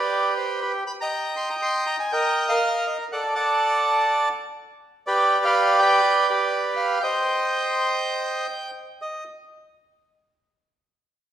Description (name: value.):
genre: tango.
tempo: 122 BPM.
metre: 4/4.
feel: rubato.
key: C minor.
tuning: A4 = 440 Hz.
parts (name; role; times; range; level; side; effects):
bandoneon; solo; 0.0-9.2 s; G4 to C6; -20 LUFS; right 1 dB; none.
room: wet recital hall reverb, RT60 1.6 s.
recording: recorded in a church or concert hall.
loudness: -20 LUFS.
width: side -10 dB against mid.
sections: 0.0-9.0 A section; 9.0-11.0 B section.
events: none.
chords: 0.1 G; 1.1 Eb; 3.1 D; 5.1 G; 7.0 Cm; 8.5 N.C..